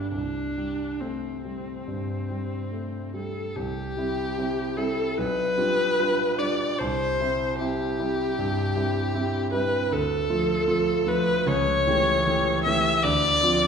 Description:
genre	classical, romantic duo for viola and grand piano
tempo	67-78 BPM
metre	4/4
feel	rubato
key	C major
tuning	A4 = 440 Hz
part	rich viola	melody	0.0-13.7 s	C4 to E5	-25 LUFS	left 1 dB	none
part	warm concert grand piano	accompaniment	0.0-13.7 s	G1 to G4	-27 LUFS	right 1 dB	none
room	wet recital hall reverb, RT60 1.4 s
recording	recorded in a church or concert hall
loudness	-23 LUFS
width	side -6 dB against mid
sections	0.0-3.6 A section; 3.6-13.7 B section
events	none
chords	0.1 C5; 3.6 C; 5.2 G7/B; 6.8 C; 9.9 Dm; 11.5 A7/C#; 13.0 Dm7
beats	| 0.12 1.01 1.87 2.72 | 3.56 4.37 5.17 5.98 | 6.79 7.59 8.37 9.15 | 9.92 10.69 11.47 12.26 | 13.04

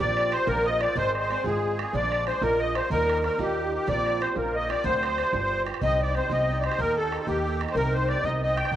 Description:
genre	celtic folk, Celtic jig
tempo	124 BPM (dotted quarters)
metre	6/8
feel	straight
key	unclear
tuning	A4 = 438 Hz
part	musette accordion	melody	0.0-8.8 s	G4 to G5	-25 LUFS	equal	cassette tape, analog delay
part	alto flute	second line	0.0-8.8 s	F4 to G5	-31 LUFS	left 7 dB	cassette tape, analog delay
part	picked swing-style acoustic guitar	accompaniment	0.0-8.8 s	G2 to Ab4	-33 LUFS	right 6 dB	cassette tape
part	upright bass	bass	0.0-8.8 s	G1 to Eb2	-31 LUFS	equal	none
part	bodhran	percussion	0.2-8.8 s	none	-36 LUFS	right 5 dB	none
room	moderate lush hall reverb, RT60 2.6 s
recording	home recording on cassette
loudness	-23 LUFS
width	side -11 dB against mid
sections	0.0-5.8 A section; 5.8-8.8 B section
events	none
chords	0.0 Bbadd9; 1.0 Fm/Ab; 1.9 Bb7; 2.9 Ebadd9; 3.9 Bbadd9; 4.8 D7; 5.3 G7; 5.8 Cm; 6.8 Eb; 7.8 Cm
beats	0.48 | 0.96 1.45 | 1.93 2.42 | 2.90 3.39 | 3.87 4.36 | 4.84 5.33 | 5.81 6.30 | 6.78 7.27 | 7.75 8.24 | 8.72

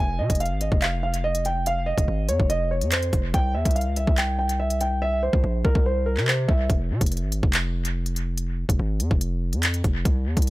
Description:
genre	hip hop, drill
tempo	143 BPM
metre	4/4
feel	half-time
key	F minor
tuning	A4 = 437 Hz
part	dark concert grand piano	melody	0.0-6.7 s	Bb4 to Ab5	-26 LUFS	right 1 dB	analog delay
part	distorted 808-style bass	bass	0.0-10.5 s	F1 to C3	-24 LUFS	equal	distortion
part	drill drum kit	drums	0.3-10.5 s	handclaps, hi-hat, kick drum	-23 LUFS	equal	none
room	little or no reverb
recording	echo-heavy mix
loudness	-21 LUFS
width	side -18 dB against mid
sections	0.0-10.5 A section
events	hi-hats muted 5.0-6.7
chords	0.0 Fm7; 3.3 C; 6.7 Fm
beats	0.40 0.82 1.24 | 1.66 2.08 2.50 2.92 | 3.34 3.76 4.18 4.60 | 5.02 5.44 5.86 6.28 | 6.70 7.12 7.54 7.96 | 8.38 8.79 9.21 9.63 | 10.05 10.47

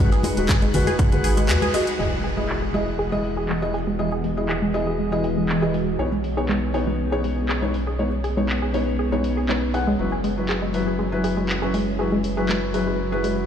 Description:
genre	progressive house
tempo	120 BPM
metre	4/4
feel	straight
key	unclear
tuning	A4 = 440 Hz
part	shimmering ambient pad	sustained chords	0.0-13.5 s	E3 to D#5	-29 LUFS	right 1 dB	chorus, built-in reverb, phaser, sidechain pumping
part	felt-muted upright piano	stabs	0.0-13.5 s	F#3 to F#5	-25 LUFS	left 2 dB	sidechain pumping, digital delay
part	round analog bass	bass	0.0-13.5 s	D#1 to D#2	-27 LUFS	equal	sidechain pumping
part	drifting glass-harmonics texture	texture	0.0-2.0 s	F#5 to F#6	-40 LUFS	right 1 dB	none
part	wide unison pluck	arpeggios	0.1-13.3 s	G#3 to G#4	-27 LUFS	right 1 dB	sidechain pumping, digital delay
part	house drum kit	drums	0.1-13.3 s	handclaps, hi-hat	-31 LUFS	equal	overdrive, low-pass filter on hats, low-pass filter on snare
part	congas	percussion	0.2-1.7 s	none	-29 LUFS	left 1 dB	sidechain pumping on perc
part	electronic kick drum	drums	0.5-1.1 s	none	-19 LUFS	equal	none
part	impact	sound effects	2.0-4.0 s	none	-32 LUFS	equal	none
room	moderate huge ambient reverb, RT60 6.7 s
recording	played on a big sound system in a bare room, stone room reverb, lossy compression artefacts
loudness	-20 LUFS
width	side -8 dB against mid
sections	0.0-2.0 A section; 2.0-13.5 B section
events	kick drops out 1.5-2.0; band accent 1.5; impact 2.0-4.0; filter sweep on ambient pad 2.0-13.5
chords	0.0 G#m7; 2.0 Emaj7; 6.0 Badd9; 10.0 F#7sus4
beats	0.49 0.99 1.49 | 1.99 2.49 2.99 3.49 | 3.99 4.49 4.99 5.49 | 5.99 6.49 6.99 7.49 | 7.99 8.49 8.99 9.49 | 9.99 10.49 10.99 11.49 | 11.99 12.49 12.99

